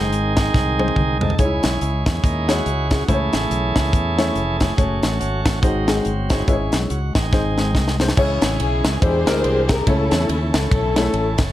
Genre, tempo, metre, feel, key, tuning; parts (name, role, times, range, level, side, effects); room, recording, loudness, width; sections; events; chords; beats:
uptempo gospel; 142 BPM; 4/4; swing 59% on 8ths; C# minor; A4 = 440 Hz
warm upright piano; accompaniment; 0.0-11.3 s; G#2 to D#5; -23 LUFS; left 2 dB
bright tonewheel organ; sustained chords; 0.0-11.5 s; D#3 to B#4; -24 LUFS; right 2 dB; stopped rotary speaker
fingered electric bass; bass; 0.0-11.5 s; E#1 to E2; -23 LUFS; equal
tight funk drum kit; drums; 0.1-11.5 s; crash cymbal, hi-hat, kick drum, ride cymbal, snare drum, toms; -20 LUFS; equal
warm symphonic string section; melody; 8.6-11.4 s; C#4 to B#4; -22 LUFS; left 2 dB
light reverb, small room ambience; -16 LUFS; side -13 dB against mid
0.0-8.2 A section; 8.2-11.5 B section
tonewheel organ solo 0.0-8.2; drum fill 0.5-1.4, 7.3-8.2
0.0 G#; 1.4 C#m; 3.1 A; 4.8 F#m; 5.6 G#7; 6.5 C#m/G#; 7.3 G#; 8.2 C#m; 9.0 E7alt; 9.9 A/C#
0.12 0.55 0.97 | 1.39 1.81 2.24 2.66 | 3.08 3.51 3.93 4.36 | 4.78 5.20 5.63 6.05 | 6.48 6.90 7.33 7.75 | 8.17 8.60 9.02 9.45 | 9.87 10.29 10.72 11.14